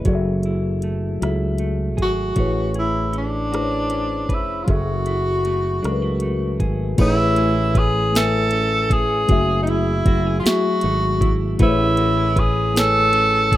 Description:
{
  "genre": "slow six-eight R&B",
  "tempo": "52 BPM (dotted quarters)",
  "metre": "6/8",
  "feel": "straight",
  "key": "A major",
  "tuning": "A4 = 440 Hz",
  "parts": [
    { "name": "clean electric guitar", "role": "second line", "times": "0.0-13.6 s", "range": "F#3 to B4", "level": "-30 LUFS", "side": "right 6 dB", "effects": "spring reverb" },
    { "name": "mellow tine electric piano", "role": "accompaniment", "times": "0.0-13.6 s", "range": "F#3 to G#5", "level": "-24 LUFS", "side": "left 2 dB", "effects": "slow stereo tremolo" },
    { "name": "fretless electric bass", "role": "bass", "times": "0.1-13.6 s", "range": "F1 to C#2", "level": "-23 LUFS", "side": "equal", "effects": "none" },
    { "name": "smooth R&B drum kit", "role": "drums", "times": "0.1-13.6 s", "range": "crash cymbal, hi-hat, kick drum, rim click, snare drum", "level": "-20 LUFS", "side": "equal", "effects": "none" },
    { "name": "warm tenor saxophone", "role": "melody", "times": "2.0-13.6 s", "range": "D4 to A4", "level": "-20 LUFS", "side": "equal", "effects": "none" }
  ],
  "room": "digital ambience",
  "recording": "rough home demo mix",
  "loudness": "-17 LUFS",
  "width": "side -14 dB against mid",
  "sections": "0.0-7.0 A section; 7.0-13.6 B section",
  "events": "none",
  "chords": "0.1 F#m9; 2.4 Amaj9; 4.7 F#m9; 7.0 Amaj9; 9.3 F#m9; 11.6 Amaj9"
}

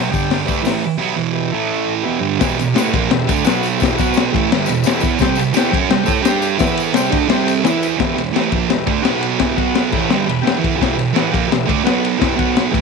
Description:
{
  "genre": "garage rock duo or trio",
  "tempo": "171 BPM",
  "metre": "4/4",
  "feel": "straight",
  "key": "E minor",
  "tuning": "A4 = 440 Hz",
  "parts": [
    { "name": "overdriven combo organ", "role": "sustained chords", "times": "0.0-12.8 s", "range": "E4 to B5", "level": "-24 LUFS", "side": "left 14 dB", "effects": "none" },
    { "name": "thick fuzz guitar", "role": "riff", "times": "0.0-12.8 s", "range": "E2 to A4", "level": "-17 LUFS", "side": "right 10 dB", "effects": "distortion" },
    { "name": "crunchy breakbeat drum kit", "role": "drums", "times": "0.1-12.8 s", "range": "crash cymbal, hi-hat, kick drum, ride cymbal, snare drum", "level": "-18 LUFS", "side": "left 7 dB", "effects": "none" },
    { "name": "tambourine", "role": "percussion", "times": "0.1-7.9 s", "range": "none", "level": "-33 LUFS", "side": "left 18 dB", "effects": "none" }
  ],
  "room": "light reverb, small room ambience",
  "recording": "1960s-style stereo with parts hard left and right",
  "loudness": "-14 LUFS",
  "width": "side -4 dB against mid",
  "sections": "0.0-2.4 A section; 2.4-8.0 B section; 8.0-12.8 C section",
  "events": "transistor combo organ fill 10.1-10.8",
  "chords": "0.1 G5; 0.5 Em; 1.5 A5; 2.1 Em; 3.5 B5; 3.8 Em; 4.0 B5; 4.3 Em; 5.2 C5; 6.2 G5; 6.6 E5; 6.9 C5; 7.6 E5; 8.0 Em; 9.0 B5; 9.4 Em; 9.6 B5; 9.9 Em; 11.9 B5; 12.2 Em; 12.4 B5"
}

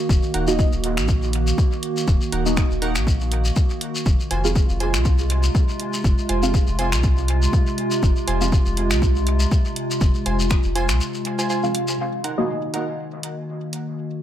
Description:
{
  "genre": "dub techno",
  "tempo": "121 BPM",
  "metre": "4/4",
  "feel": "swing 55% on 16ths",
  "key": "Eb dorian",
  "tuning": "A4 = 440 Hz",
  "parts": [
    { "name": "warbly tape-like pad", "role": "sustained chords", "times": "0.0-14.2 s", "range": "C3 to Gb4", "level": "-25 LUFS", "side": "right 2 dB", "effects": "chorus, built-in reverb, sidechain pumping" },
    { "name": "deep mellow chord stab", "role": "stabs", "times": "0.0-14.2 s", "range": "Bb3 to F5", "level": "-27 LUFS", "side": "equal", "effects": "chorus, phaser, sidechain pumping, dub echo" },
    { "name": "soft dub sub bass", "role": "bass", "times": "0.1-11.0 s", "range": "Eb1 to C2", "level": "-22 LUFS", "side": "equal", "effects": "sidechain pumping" },
    { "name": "electronic kick drum", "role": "drums", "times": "0.1-10.6 s", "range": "none", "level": "-18 LUFS", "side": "equal", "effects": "none" },
    { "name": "shekere", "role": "percussion", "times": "0.1-12.0 s", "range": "none", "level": "-30 LUFS", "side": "left 4 dB", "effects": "none" },
    { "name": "wavetable chord stab", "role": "riff", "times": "0.3-12.8 s", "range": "Eb4 to Ab5", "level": "-30 LUFS", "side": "right 2 dB", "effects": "sidechain pumping, dub echo" },
    { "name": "punchy analog drum machine", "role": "drums", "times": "0.3-13.8 s", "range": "finger snaps, hi-hat", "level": "-29 LUFS", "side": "equal", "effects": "dub echo" }
  ],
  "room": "light reverb, digital ambience",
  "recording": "none",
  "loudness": "-18 LUFS",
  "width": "side -11 dB against mid",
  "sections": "0.0-12.0 A section; 12.0-14.2 B section",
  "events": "break 11.0-12.0; filter sweep on ambient pad 12.0-14.2",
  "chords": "0.0 Ebm; 4.1 Fm; 12.0 Ebm"
}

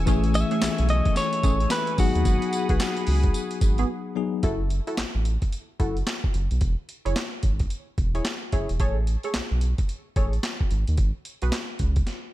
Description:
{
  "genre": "R&B, new jack swing",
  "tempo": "110 BPM",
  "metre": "4/4",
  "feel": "swing 62% on 16ths",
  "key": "F# dorian",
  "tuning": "A4 = 439 Hz",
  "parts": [
    { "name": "bell-like tine electric piano", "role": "accompaniment", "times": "0.0-4.5 s", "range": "E3 to G#4", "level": "-28 LUFS", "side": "left 7 dB", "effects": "fast stereo tremolo" },
    { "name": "warm analog pad", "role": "sustained chords", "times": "0.0-4.4 s", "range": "A3 to E6", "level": "-34 LUFS", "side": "left 3 dB", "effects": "chorus" },
    { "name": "round analog bass", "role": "bass", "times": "0.0-12.0 s", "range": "E1 to D#2", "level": "-24 LUFS", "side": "equal", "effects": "none" },
    { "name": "funky polysynth comp", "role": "stabs", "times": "0.1-11.5 s", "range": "A3 to C#5", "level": "-32 LUFS", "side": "right 2 dB", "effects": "chorus" },
    { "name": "boom bap sampler-style drum kit", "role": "drums", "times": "0.1-12.2 s", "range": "handclaps, hi-hat, kick drum, snare drum, tambourine", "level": "-26 LUFS", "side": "equal", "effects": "none" },
    { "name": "direct-recorded clean electric guitar", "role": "melody", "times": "0.4-3.9 s", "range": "F#4 to E5", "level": "-28 LUFS", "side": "equal", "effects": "none" }
  ],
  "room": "little or no reverb",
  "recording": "none",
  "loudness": "-22 LUFS",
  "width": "side -15 dB against mid",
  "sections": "0.0-4.4 A section; 4.4-12.3 B section",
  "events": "break 3.9-4.4",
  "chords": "0.1 Amaj7; 2.0 G#m7; 4.4 F#m7; 6.6 E6; 8.8 Amaj7; 10.7 G#m7"
}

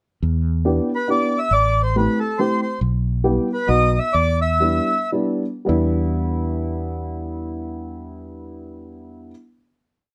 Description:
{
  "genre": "musette waltz",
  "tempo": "107-141 BPM",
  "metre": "3/4",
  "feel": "swing 54% on 8ths",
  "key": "E minor",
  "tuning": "A4 = 435 Hz",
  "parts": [
    { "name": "mellow fretless electric bass", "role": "bass", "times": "0.2-9.3 s", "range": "A1 to E2", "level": "-24 LUFS", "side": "equal", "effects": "none" },
    { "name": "dark upright piano", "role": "accompaniment", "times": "0.7-9.3 s", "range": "F#3 to G4", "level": "-25 LUFS", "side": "equal", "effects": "none" },
    { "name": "mellow accordion", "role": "melody", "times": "1.0-5.1 s", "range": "A4 to E5", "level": "-22 LUFS", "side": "equal", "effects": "none" }
  ],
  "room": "light reverb",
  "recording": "none",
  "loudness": "-20 LUFS",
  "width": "mono",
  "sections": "0.2-5.7 A section; 5.7-9.0 final chord",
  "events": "slowing down 2.8-5.7",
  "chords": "0.2 Em7; 1.5 Am7; 2.8 Em/B; 3.7 B; 4.1 Em7"
}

